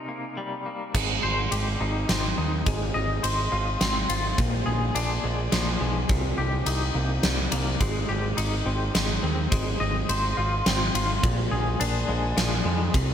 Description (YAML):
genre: post-rock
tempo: 105 BPM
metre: 3/4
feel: straight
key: Ab lydian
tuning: A4 = 440 Hz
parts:
  - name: twangy electric guitar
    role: arpeggios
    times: 0.0-13.1 s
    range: Bb2 to Eb5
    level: -28 LUFS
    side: left 1 dB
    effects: tremolo, digital delay
  - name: growling picked electric bass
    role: bass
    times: 0.9-13.1 s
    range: Ab1 to F2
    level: -27 LUFS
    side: equal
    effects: overdrive
  - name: huge arena drum kit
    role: drums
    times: 0.9-13.1 s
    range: crash cymbal, kick drum, ride cymbal, snare drum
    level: -27 LUFS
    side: equal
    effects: none
room: light reverb, small room ambience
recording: none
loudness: -23 LUFS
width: side -9 dB against mid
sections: 0.9-13.1 A section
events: none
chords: 0.0 Cm7; 0.9 Abmaj7; 2.7 Fm7/Ab; 4.4 Bb7; 6.1 Cm7; 7.8 Abmaj7; 9.5 Fm7/Ab; 11.2 Bb7